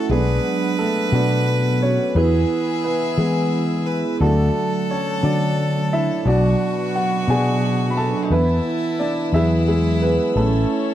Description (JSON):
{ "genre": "acoustic folk-pop ballad", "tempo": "58 BPM (dotted quarters)", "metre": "6/8", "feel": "straight", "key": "unclear", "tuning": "A4 = 441 Hz", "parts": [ { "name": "warm upright piano", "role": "melody", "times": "0.0-10.9 s", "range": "B2 to B5", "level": "-21 LUFS", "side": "equal", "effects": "tape echo" }, { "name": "bright violin", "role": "second line", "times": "0.0-10.9 s", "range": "C#4 to B4", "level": "-28 LUFS", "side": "left 1 dB", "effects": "none" }, { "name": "warm chamber string section", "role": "sustained chords", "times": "0.0-10.9 s", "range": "A4 to E6", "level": "-32 LUFS", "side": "left 7 dB", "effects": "none" }, { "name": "vibraphone with soft mallets", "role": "arpeggios", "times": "0.0-10.9 s", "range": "F#3 to A4", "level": "-25 LUFS", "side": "right 8 dB", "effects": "none" }, { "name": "mellow fretless electric bass", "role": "bass", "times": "0.1-10.6 s", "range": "A1 to E3", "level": "-19 LUFS", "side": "left 1 dB", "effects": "none" } ], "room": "little or no reverb", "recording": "dry, close 1970s-style studio recording", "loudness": "-17 LUFS", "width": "side -12 dB against mid", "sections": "0.0-10.9 A section", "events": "none", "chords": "0.1 Bm; 2.2 E; 4.2 D; 6.3 Bmadd9; 8.3 Esus4; 9.3 Eadd9; 10.4 A" }